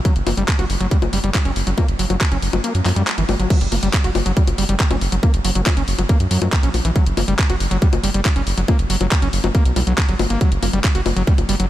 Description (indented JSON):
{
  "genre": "psychedelic trance",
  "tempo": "139 BPM",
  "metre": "4/4",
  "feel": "straight",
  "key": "unclear",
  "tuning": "A4 = 440 Hz",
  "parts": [
    { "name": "overdriven acid bass", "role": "riff", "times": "0.1-11.7 s", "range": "E3 to F#4", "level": "-23 LUFS", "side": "equal", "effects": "distortion, auto-pan, sidechain pumping, analog delay" },
    { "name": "electronic kick drum", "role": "drums", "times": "0.1-11.4 s", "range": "none", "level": "-16 LUFS", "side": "equal", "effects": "none" },
    { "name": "garage drum kit", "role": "drums", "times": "0.1-11.7 s", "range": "bongos, crash cymbal, handclaps, hi-hat", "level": "-22 LUFS", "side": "left 3 dB", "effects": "none" },
    { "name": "round analog bass", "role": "bass", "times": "0.2-11.7 s", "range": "F#1 to F#2", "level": "-20 LUFS", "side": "equal", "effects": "none" }
  ],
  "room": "light reverb, digital ambience",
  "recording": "none",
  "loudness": "-15 LUFS",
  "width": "side -14 dB against mid",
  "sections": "0.0-3.5 A section; 3.5-11.7 B section",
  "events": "kick drops out 2.6-3.5; drop 3.5-11.7",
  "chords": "0.0 F#5",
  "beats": "| 0.05 0.48 0.91 1.34 | 1.78 2.21 2.64 3.07 | 3.50 3.94 4.37 4.80 | 5.23 5.66 6.09 6.53 | 6.96 7.39 7.82 8.25 | 8.68 9.12 9.55 9.98 | 10.41 10.84 11.27"
}